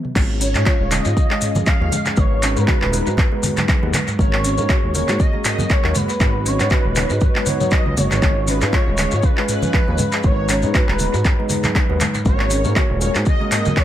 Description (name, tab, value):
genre	afro house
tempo	119 BPM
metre	4/4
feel	swing 55% on 16ths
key	unclear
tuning	A4 = 441 Hz
part	folk marimba with soft mallets	arpeggios	0.0-13.8 s	E#3 to F#4	-27 LUFS	equal	sidechain pumping, dub echo
part	afro-pop drum kit	drums	0.0-13.8 s	crash cymbal, handclaps, hi-hat, toms	-22 LUFS	equal	studio ambience, dub echo
part	dark analog pad	sustained chords	0.2-13.8 s	G#3 to A#5	-30 LUFS	right 2 dB	chorus, sidechain pumping
part	mellow tine electric piano	stabs	0.2-13.8 s	F#3 to C#5	-28 LUFS	left 2 dB	overdrive, medium stereo tremolo, sidechain pumping, dub echo
part	smooth gliding synth bass	bass	0.2-13.2 s	D#1 to G#2	-21 LUFS	equal	sidechain pumping
part	electronic kick drum	drums	0.2-13.8 s	none	-17 LUFS	equal	studio ambience
part	congas	percussion	0.2-13.8 s	none	-27 LUFS	right 1 dB	none
part	maracas	percussion	0.2-13.8 s	none	-30 LUFS	left 4 dB	none
part	expressive portamento lead	melody	0.4-13.8 s	B4 to E#5	-24 LUFS	equal	ensemble chorus, dub echo
room	light reverb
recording	echo-heavy mix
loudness	-15 LUFS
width	side -12 dB against mid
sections	0.2-13.8 A section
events	break 0.0; drum fill 0.0; drop 0.2-13.8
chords	0.2 C#; 2.2 G#m; 4.2 F#add9; 6.2 B; 8.2 C#; 10.2 G#m; 12.3 F#add9